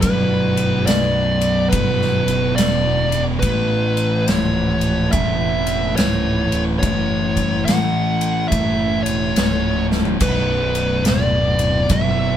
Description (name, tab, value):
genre	stoner and doom metal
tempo	71 BPM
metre	4/4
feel	swing 64% on 8ths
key	unclear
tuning	A4 = 443 Hz
part	fuzz lead guitar	melody	0.0-12.4 s	B4 to F#5	-21 LUFS	right 1 dB	distortion
part	analog drone	sustained chords	0.0-12.4 s	A3 to D5	-32 LUFS	right 1 dB	chorus
part	thick fuzz guitar	riff	0.0-12.4 s	B1 to A3	-22 LUFS	left 3 dB	distortion
part	thick fuzz guitar	riff	0.0-12.4 s	B1 to A3	-23 LUFS	right 4 dB	distortion
part	fuzz fingered electric bass	bass	0.0-12.4 s	B0 to B1	-24 LUFS	equal	overdrive, tube saturation
part	big rock drum kit	drums	0.0-12.2 s	crash cymbal, kick drum, ride cymbal, snare drum, toms	-23 LUFS	left 1 dB	none
room	light reverb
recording	band playing live in one room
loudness	-16 LUFS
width	side -10 dB against mid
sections	0.0-12.4 A section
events	drum fill 9.8-10.2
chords	0.0 Bm; 3.4 A; 10.2 Bm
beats	| 0.04 0.89 1.74 2.59 | 3.44 4.29 5.14 5.99 | 6.83 7.68 8.53 9.38 | 10.22 11.07 11.91